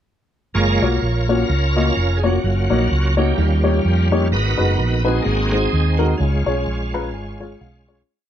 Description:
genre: uptempo gospel.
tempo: 128 BPM.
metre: 4/4.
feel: swing 57% on 8ths.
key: F# major.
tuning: A4 = 440 Hz.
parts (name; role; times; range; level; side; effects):
bright tonewheel organ; sustained chords; 0.5-8.0 s; F#3 to C#5; -22 LUFS; right 2 dB; fast rotary speaker, overdrive, chorus vibrato.
hollow-body short-scale fingered electric bass; bass; 0.6-8.0 s; E#1 to E#2; -19 LUFS; right 1 dB; none.
dark baby grand piano; accompaniment; 0.8-8.0 s; G#2 to A#5; -22 LUFS; left 3 dB; none.
room: light reverb.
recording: dark, warm production.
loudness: -16 LUFS.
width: side -10 dB against mid.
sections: 0.6-8.1 breakdown.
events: tonewheel organ solo 0.6-8.1; fade-out 6.2-8.1; grand piano fill 6.7-8.1.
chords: 0.6 F#maj7; 2.4 D#m7/F#; 3.4 D#7; 4.3 G#m7; 5.3 G#7; 6.2 C#.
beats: | 0.56 1.03 1.50 1.97 | 2.44 2.91 3.38 3.85 | 4.33 4.79 5.26 5.73 | 6.20 6.67 7.14 7.61.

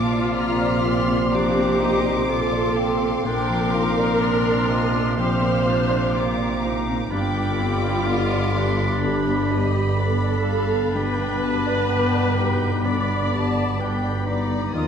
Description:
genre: cinematic, emotional film score for orchestra.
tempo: 62 BPM.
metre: 4/4.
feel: rubato.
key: unclear.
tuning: A4 = 440 Hz.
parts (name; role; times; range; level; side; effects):
rich studio violin section; melody; 0.0-14.9 s; B5 to F6; -34 LUFS; left 2 dB; none.
dark studio violin section; second line; 0.0-14.9 s; D5 to C6; -31 LUFS; left 2 dB; none.
small flute group; second line; 0.0-14.9 s; D6 to Eb6; -33 LUFS; left 4 dB; none.
warm oboe; second line; 0.0-14.9 s; F5 to C6; -33 LUFS; right 1 dB; none.
dark concert grand piano; accompaniment; 0.0-14.9 s; Eb2 to D5; -29 LUFS; left 3 dB; none.
dark studio viola section; accompaniment; 0.0-14.9 s; F4 to D5; -25 LUFS; right 1 dB; none.
mellow French horn section; sustained chords; 0.0-14.9 s; B2 to C4; -28 LUFS; left 3 dB; none.
rich studio cello section; bass; 0.0-14.9 s; Eb2 to Bb2; -26 LUFS; right 4 dB; none.
warm studio double bass section; bass; 0.0-14.9 s; G1 to Eb2; -27 LUFS; right 2 dB; none.
clear clarinet; second line; 1.3-14.9 s; B3 to F4; -31 LUFS; left 2 dB; none.
room: wet scoring stage reverb, RT60 1.8 s.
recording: minimal, uncompressed stereo recording.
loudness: -19 LUFS.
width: side -7 dB against mid.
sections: 0.0-14.9 A section.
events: none.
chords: 0.0 Bbadd9; 7.1 G.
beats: 0.35 1.32 2.29 | 3.25 4.22 5.18 6.15 | 7.12 8.08 9.04 9.99 | 10.94 11.89 12.85 13.79 | 14.74.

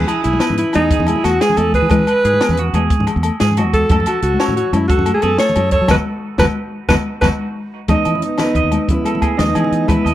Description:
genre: highlife guitar band.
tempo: 120 BPM (dotted quarters).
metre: 12/8.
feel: straight.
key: E major.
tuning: A4 = 440 Hz.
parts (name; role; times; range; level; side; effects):
breathy alto saxophone; melody; 0.0-10.1 s; D#4 to C#5; -18 LUFS; equal; none.
mellow electric guitar; accompaniment; 0.0-10.1 s; D#3 to C#4; -23 LUFS; left 4 dB; none.
clean electric guitar; arpeggios; 0.0-10.1 s; D#4 to D#5; -22 LUFS; right 8 dB; spring reverb, analog delay.
fingered electric bass; bass; 0.0-10.1 s; F#1 to F#3; -19 LUFS; equal; none.
congas; percussion; 0.0-10.0 s; none; -23 LUFS; left 2 dB; none.
compact cocktail drum kit; drums; 0.1-10.1 s; hi-hat, kick drum, snare drum; -20 LUFS; equal; none.
agogo bells; percussion; 0.1-10.1 s; none; -26 LUFS; left 5 dB; none.
trombone with bucket mute; second line; 7.9-10.1 s; B3 to C#4; -25 LUFS; right 5 dB; none.
room: light reverb, small room ambience.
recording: none.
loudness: -13 LUFS.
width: side -13 dB against mid.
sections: 0.0-7.9 A section; 7.9-10.1 B section.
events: band accent 5.9-7.9; drum fill 6.9-7.9.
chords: 0.0 E; 3.9 F#m; 5.9 B/F#; 7.9 Emaj7.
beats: 0.41 0.91 1.41 | 1.91 2.41 2.90 3.40 | 3.90 4.40 4.90 5.40 | 5.90 6.40 6.90 7.39 | 7.89 8.39 8.89 9.39 | 9.89.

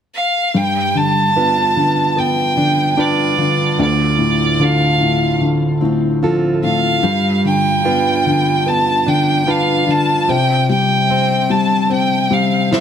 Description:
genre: pop ballad.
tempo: 74 BPM.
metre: 4/4.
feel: straight.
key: unclear.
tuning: A4 = 442 Hz.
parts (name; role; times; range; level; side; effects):
bright violin; melody; 0.2-12.8 s; D5 to A5; -16 LUFS; right 1 dB; none.
felt-muted upright piano; accompaniment; 0.5-12.8 s; D2 to E4; -17 LUFS; left 4 dB; none.
fingerpicked plugged-in steel-string acoustic guitar; arpeggios; 0.5-12.8 s; C3 to C5; -20 LUFS; right 5 dB; tape echo.
snare drum; drums; 12.7-12.8 s; none; -18 LUFS; left 1 dB; none.
room: light reverb, studio reverb.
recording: none.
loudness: -13 LUFS.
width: side -8 dB against mid.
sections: 0.5-12.8 A section.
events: none.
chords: 0.0 N.C.; 0.5 G7; 3.8 Dm7; 7.0 G7; 10.3 C5.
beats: | 0.55 1.36 2.17 2.98 | 3.79 4.60 5.41 6.22 | 7.04 7.85 8.66 9.47 | 10.28 11.09 11.90 12.71.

